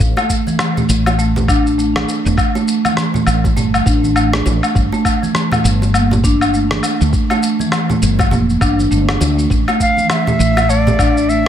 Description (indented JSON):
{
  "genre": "organic downtempo",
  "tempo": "101 BPM",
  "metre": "4/4",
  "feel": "swing 60% on 16ths",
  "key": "unclear",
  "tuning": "A4 = 440 Hz",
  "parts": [
    { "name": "woody fretless electric bass", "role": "bass", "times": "0.0-11.5 s", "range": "E1 to D2", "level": "-16 LUFS", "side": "equal", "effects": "ensemble chorus, sidechain pumping" },
    { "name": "electronic kick drum", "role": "drums", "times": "0.0-11.1 s", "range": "none", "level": "-17 LUFS", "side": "equal", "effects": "none" },
    { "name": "electronic shaker, woodblock and rim click", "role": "drums", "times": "0.0-11.4 s", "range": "none", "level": "-19 LUFS", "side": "left 2 dB", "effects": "none" },
    { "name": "marimba with soft mallets", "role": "arpeggios", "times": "0.2-11.5 s", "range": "E3 to D4", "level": "-17 LUFS", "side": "right 1 dB", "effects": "tape echo" },
    { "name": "bongos and congas", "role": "percussion", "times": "0.2-11.0 s", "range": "none", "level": "-23 LUFS", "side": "right 2 dB", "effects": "none" },
    { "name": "bright Native American-style cedar flute", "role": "melody", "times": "9.8-11.5 s", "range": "D5 to F5", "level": "-16 LUFS", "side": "equal", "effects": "none" }
  ],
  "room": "light reverb, digital ambience",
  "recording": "none",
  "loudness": "-12 LUFS",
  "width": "side -10 dB against mid",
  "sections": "0.0-11.5 A section",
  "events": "none",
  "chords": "0.0 N.C.; 4.8 G5; 9.5 Asus4"
}